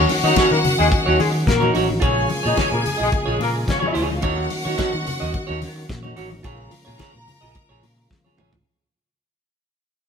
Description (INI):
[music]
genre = disco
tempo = 108 BPM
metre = 4/4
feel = straight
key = Eb minor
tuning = A4 = 441 Hz
[part]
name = clear studio string section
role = second line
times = 0.0-8.3 s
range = Gb3 to Bb5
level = -26 LUFS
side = left 2 dB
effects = none
[part]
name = semi-hollow electric guitar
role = accompaniment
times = 0.0-8.6 s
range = Eb4 to Eb5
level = -23 LUFS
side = right 2 dB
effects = none
[part]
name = percussive tonewheel organ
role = sustained chords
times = 0.0-8.6 s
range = Db3 to Gb4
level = -30 LUFS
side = left 1 dB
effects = chorus vibrato, slow rotary speaker
[part]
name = mellow horn section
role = stabs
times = 0.0-3.9 s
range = Gb3 to Eb5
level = -23 LUFS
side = left 4 dB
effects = none
[part]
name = fingered electric bass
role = bass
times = 0.0-8.6 s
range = A1 to Eb3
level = -24 LUFS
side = equal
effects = none
[part]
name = damped 70s drum kit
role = drums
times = 0.1-8.7 s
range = hi-hat, kick drum, snare drum, toms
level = -25 LUFS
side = equal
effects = none
[part]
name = congas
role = percussion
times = 0.1-8.4 s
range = none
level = -30 LUFS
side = left 4 dB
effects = none
[sound]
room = wet stone room reverb, RT60 1.3 s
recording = band playing live in one room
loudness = -17 LUFS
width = side -6 dB against mid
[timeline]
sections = 0.0-8.7 A section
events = fade-out 0.0-8.7; drum fill 8.1-8.7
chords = 0.0 Ebm7; 2.0 Bbm7; 4.2 Ebm7; 6.4 Bbm7